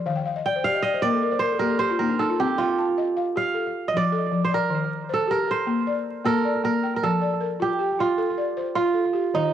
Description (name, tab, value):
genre	west african traditional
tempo	104 BPM (dotted quarters)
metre	12/8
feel	straight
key	unclear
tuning	A4 = 440 Hz
part	kora	melody	0.0-9.5 s	Eb4 to G5	-23 LUFS	right 5 dB	cassette tape, plate reverb, analog delay
part	balafon	arpeggios	0.0-9.5 s	Eb3 to A5	-25 LUFS	left 4 dB	cassette tape, plate reverb
room	wet small room reverb, RT60 0.5 s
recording	home recording on cassette, vinyl crackle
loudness	-21 LUFS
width	side -10 dB against mid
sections	0.0-7.0 A section; 7.0-9.5 B section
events	kora solo 0.0-7.0; balafon fill 0.1-2.4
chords	0.1 Eb; 1.2 N.C.; 2.4 Cm; 3.6 F; 4.7 Eb; 5.9 Bb; 7.0 F